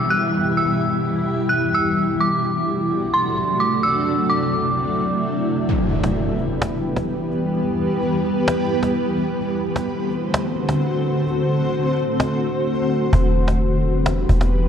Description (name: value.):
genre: hip hop, atmospheric cloud-rap.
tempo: 129 BPM.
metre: 4/4.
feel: half-time.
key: E minor.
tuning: A4 = 440 Hz.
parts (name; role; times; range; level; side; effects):
dark detuned synth bell; melody; 0.0-5.2 s; C6 to F#6; -21 LUFS; right 1 dB; chorus, ping-pong delay.
granular cloud pad; sustained chords; 0.0-14.7 s; B2 to C5; -20 LUFS; equal; built-in reverb.
downlifter and impact; sound effects; 0.0-2.0, 5.7-7.5 s; none; -28 LUFS; equal; none.
cajon; drums; 5.7-14.6 s; none; -24 LUFS; equal; none.
soft 808-style bass; bass; 13.1-14.7 s; E1; -18 LUFS; equal; none.
room: moderate lush hall reverb, RT60 2.0 s, digital ambience.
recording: worn, warbling old tape, cassette tape, warbly pitch drift.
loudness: -18 LUFS.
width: side -8 dB against mid.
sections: 0.0-5.7 A section; 5.7-14.7 B section.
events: kick muted 5.7-13.1; impact 5.7-7.5.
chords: 0.0 Em; 2.0 D7; 5.7 Em; 9.4 D7; 13.1 Em.